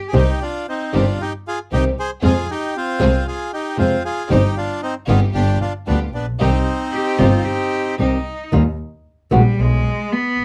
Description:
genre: tango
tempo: 114 BPM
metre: 4/4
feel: rubato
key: C harmonic minor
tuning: A4 = 440 Hz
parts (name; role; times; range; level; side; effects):
- bandoneon; melody; 0.1-8.0 s; B3 to C5; -25 LUFS; equal; none
- flamenco guitar; accompaniment; 0.1-9.4 s; Cb3 to G4; -21 LUFS; equal; none
- warm studio string section; stabs; 0.1-8.2 s; B3 to Ab4; -30 LUFS; equal; none
- rich double bass; bass; 0.1-10.4 s; G1 to F2; -20 LUFS; equal; none
- clear cello; second line; 6.9-10.4 s; G3 to G4; -25 LUFS; equal; none
room: light reverb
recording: close, detailed microphones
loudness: -19 LUFS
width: mono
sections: 0.0-8.5 A section; 8.5-10.4 B section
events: cello solo 8.5-10.4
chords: 0.1 Cm; 2.2 Fm; 4.3 Cm/G; 5.3 G7; 6.4 Cm; 8.5 Eb; 9.6 Abm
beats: | 0.14 0.67 1.20 1.72 | 2.23 2.75 3.27 3.79 | 4.31 4.83 5.35 5.88 | 6.40 6.93 7.46 7.99 | 8.53 9.06 9.59 10.11

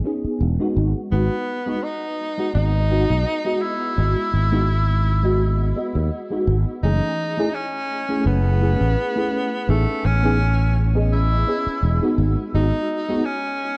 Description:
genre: vaporwave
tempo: 84 BPM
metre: 4/4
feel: swing 54% on 16ths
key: unclear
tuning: A4 = 440 Hz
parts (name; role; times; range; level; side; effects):
- mellow FM electric piano; accompaniment; 0.0-13.2 s; E3 to D#5; -27 LUFS; equal; phaser, ensemble chorus
- sustaining fretless electric bass; bass; 0.2-12.7 s; E1 to D#2; -21 LUFS; equal; none
- bright tenor saxophone; melody; 1.1-13.8 s; A3 to E4; -28 LUFS; equal; vintage 12-bit sampler grit, tape echo
room: light reverb, studio reverb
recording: dark, warm production, cassette tape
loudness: -21 LUFS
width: mono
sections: 0.0-6.8 A section; 6.8-13.8 B section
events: none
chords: 0.0 Amaj9#11 (rootless); 0.8 G#m7; 6.8 F#m9; 9.7 Amaj9#11; 12.2 G#m7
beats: 0.40 | 1.12 1.83 2.54 3.26 | 3.97 4.69 5.40 6.12 | 6.83 7.54 8.26 8.97 | 9.69 10.40 11.12 11.83 | 12.54 13.26

